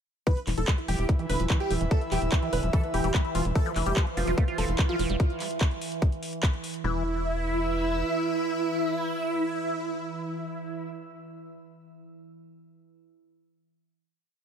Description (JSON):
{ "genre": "psychedelic trance", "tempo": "146 BPM", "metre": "4/4", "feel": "straight", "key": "unclear", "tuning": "A4 = 440 Hz", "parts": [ { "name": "dense compressed supersaw", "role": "melody", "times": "0.3-10.9 s", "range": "E4 to B4", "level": "-31 LUFS", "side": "right 1 dB", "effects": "phaser, sidechain pumping, tape echo" }, { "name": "evolving wavetable pad", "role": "sustained chords", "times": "1.2-10.9 s", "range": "E3", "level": "-36 LUFS", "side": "right 4 dB", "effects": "phaser, built-in reverb, sidechain pumping" }, { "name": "liquid acid bass", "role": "riff", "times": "0.3-7.0 s", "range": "D3 to F4", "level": "-34 LUFS", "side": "moving between left 9 dB and right 6 dB", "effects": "phaser, auto-pan, sidechain pumping, tape echo" }, { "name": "drum and bass drum kit", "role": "drums", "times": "0.3-6.8 s", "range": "handclaps, hi-hat", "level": "-34 LUFS", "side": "equal", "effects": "none" }, { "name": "electronic kick drum", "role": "drums", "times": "0.3-6.5 s", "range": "none", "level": "-24 LUFS", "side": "equal", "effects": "none" }, { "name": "airy breathy pad", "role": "texture", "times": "0.6-10.9 s", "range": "E4 to E6", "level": "-35 LUFS", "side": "right 1 dB", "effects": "chorus, sidechain pumping" }, { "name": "tight sequencer bass", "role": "bass", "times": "0.5-8.0 s", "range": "E1 to F1", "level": "-29 LUFS", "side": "equal", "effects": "none" } ], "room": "digital ambience", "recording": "none", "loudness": "-25 LUFS", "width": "side -8 dB against mid", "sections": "0.3-6.8 groove; 6.8-10.1 final chord", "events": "filter sweep on acid bass 0.3-5.2", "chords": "0.3 E5; 3.6 F5; 6.8 E5" }